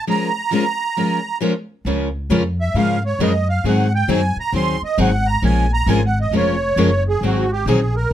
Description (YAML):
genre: acoustic string swing (jazz manouche)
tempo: 134 BPM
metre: 4/4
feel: swing 63% on 8ths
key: Db major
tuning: A4 = 441 Hz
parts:
  - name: musette accordion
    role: melody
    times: 0.0-8.1 s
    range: Gb4 to C6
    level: -21 LUFS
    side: right 3 dB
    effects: none
  - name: picked steel-string acoustic guitar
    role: accompaniment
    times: 0.1-7.8 s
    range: Db3 to Bb4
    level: -20 LUFS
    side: left 7 dB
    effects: none
  - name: picked steel-string acoustic guitar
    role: accompaniment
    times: 0.1-7.8 s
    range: Db3 to Bb4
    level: -22 LUFS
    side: right 5 dB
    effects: none
  - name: upright bass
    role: bass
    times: 1.8-8.1 s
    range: F1 to Ab2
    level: -19 LUFS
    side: equal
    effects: none
room: light reverb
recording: close, detailed microphones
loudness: -16 LUFS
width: side -11 dB against mid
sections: 0.0-1.9 A section; 1.9-8.1 B section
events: break 0.1-1.9; accordion solo 1.9-8.1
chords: 0.1 Bbm7; 1.9 Db6; 3.6 Ab7; 5.4 Bbm7; 7.2 Ab9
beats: | 0.07 0.52 0.96 1.41 | 1.85 2.30 2.75 3.19 | 3.64 4.09 4.54 4.98 | 5.43 5.88 6.33 6.78 | 7.22 7.67 8.12